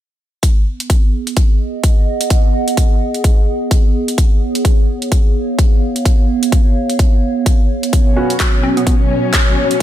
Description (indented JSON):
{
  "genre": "bass house",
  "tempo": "128 BPM",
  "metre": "4/4",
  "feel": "swing 59% on 16ths",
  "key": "G# dorian",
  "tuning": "A4 = 440 Hz",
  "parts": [
    { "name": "big-room dance drum kit", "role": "drums", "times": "0.4-9.8 s", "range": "handclaps, hi-hat", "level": "-21 LUFS", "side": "equal", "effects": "overdrive" },
    { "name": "electronic kick drum", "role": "drums", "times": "0.4-9.8 s", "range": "none", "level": "-12 LUFS", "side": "equal", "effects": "overdrive" },
    { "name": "warbly tape-like pad", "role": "texture", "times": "0.8-9.8 s", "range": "B3 to F#5", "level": "-19 LUFS", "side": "right 3 dB", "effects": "chorus, built-in reverb, sidechain pumping" },
    { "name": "dark studio string section", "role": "sustained chords", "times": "7.9-9.8 s", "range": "B2 to C#4", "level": "-20 LUFS", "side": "left 2 dB", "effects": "sidechain pumping" },
    { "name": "warm baby grand piano", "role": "stabs", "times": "8.2-8.3 s", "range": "B3 to F#4", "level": "-22 LUFS", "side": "equal", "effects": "sidechain pumping, ping-pong delay" },
    { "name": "hollow square pluck", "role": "melody", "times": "8.4-9.0 s", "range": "B3 to F#4", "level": "-22 LUFS", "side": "left 2 dB", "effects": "chorus, ping-pong delay" }
  ],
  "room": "little or no reverb",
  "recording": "none",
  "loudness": "-12 LUFS",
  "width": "side -12 dB against mid",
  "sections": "0.4-9.8 A section",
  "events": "none",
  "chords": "0.4 G#m7; 7.9 Bsus2"
}